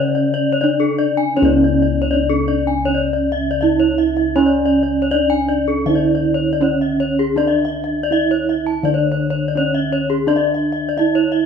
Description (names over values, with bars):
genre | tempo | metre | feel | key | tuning
Balinese gamelan | 80 BPM | 4/4 | straight | C# pelog | A4 = 440 Hz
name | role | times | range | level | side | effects
gamelan-type bronze metallophone | melody | 0.0-11.5 s | C#4 to E4-30c | -19 LUFS | right 4 dB | none
gamelan-type bronze metallophone | arpeggios | 0.0-11.4 s | G#4-30c to A5-20c | -20 LUFS | left 5 dB | none
gamelan-type bossed gongs | bass | 0.0-11.0 s | C#2 to D4+20c | -19 LUFS | left 1 dB | none
room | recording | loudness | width
moderate stone room reverb, RT60 1.0 s | band playing live in one room | -15 LUFS | side -7 dB against mid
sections
0.0-1.4 A section; 1.4-11.5 A section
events
none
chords
none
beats
0.61 | 1.36 2.11 2.86 3.61 | 4.36 5.11 5.86 6.61 | 7.36 8.11 8.84 9.56 | 10.28 10.98